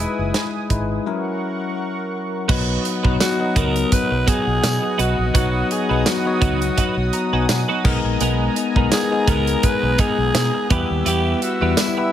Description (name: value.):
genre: 1980s-style pop.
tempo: 84 BPM.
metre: 4/4.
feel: swing 55% on 16ths.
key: B major.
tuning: A4 = 441 Hz.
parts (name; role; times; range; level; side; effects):
raspy alto saxophone; melody; 0.0-12.1 s; E4 to B4; -24 LUFS; equal; shimmer reverb.
bell-like tine electric piano; accompaniment; 0.0-12.1 s; F#3 to A#5; -23 LUFS; left 5 dB; auto-pan, shimmer reverb.
warm analog pad; sustained chords; 0.0-12.1 s; B3 to E6; -28 LUFS; equal; chorus, tremolo, shimmer reverb.
vintage muted fingered electric bass; bass; 0.0-11.7 s; F#1 to B2; -22 LUFS; right 1 dB; none.
modern studio drum kit; drums; 0.3-12.0 s; crash cymbal, hi-hat, kick drum, snare drum, tambourine; -21 LUFS; right 1 dB; none.
twelve-string electric guitar; riff; 2.5-12.0 s; G#3 to B4; -27 LUFS; right 5 dB; analog chorus, shimmer reverb.
room: light reverb, studio reverb.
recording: none.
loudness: -17 LUFS.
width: side -10 dB against mid.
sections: 0.0-2.5 A section; 2.5-12.1 B section.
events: break 1.1-2.5; tine electric piano fill 6.8-8.2.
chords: 0.0 Emaj7; 1.1 F#7; 2.5 B; 7.8 G#madd9; 10.7 Em.